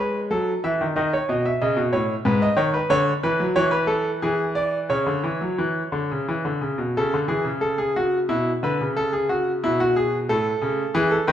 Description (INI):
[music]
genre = classical, baroque-style two-part invention for grand piano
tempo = 91 BPM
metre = 3/4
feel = straight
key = A major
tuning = A4 = 437 Hz
[part]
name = bright grand piano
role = solo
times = 0.0-11.3 s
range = G#2 to E5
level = -20 LUFS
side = equal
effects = none
[sound]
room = moderate recital hall reverb, RT60 1.5 s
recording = dark, warm production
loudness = -20 LUFS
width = side -10 dB against mid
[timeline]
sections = 0.0-7.0 A section; 7.0-11.3 B section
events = none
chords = 0.3 F#m; 1.0 B; 2.3 G#madd11; 2.9 Bm/D; 3.6 A/E; 4.2 E; 4.9 Bmadd9 (rootless); 7.0 A/C#; 8.3 E5/B; 9.0 A/C#; 10.3 A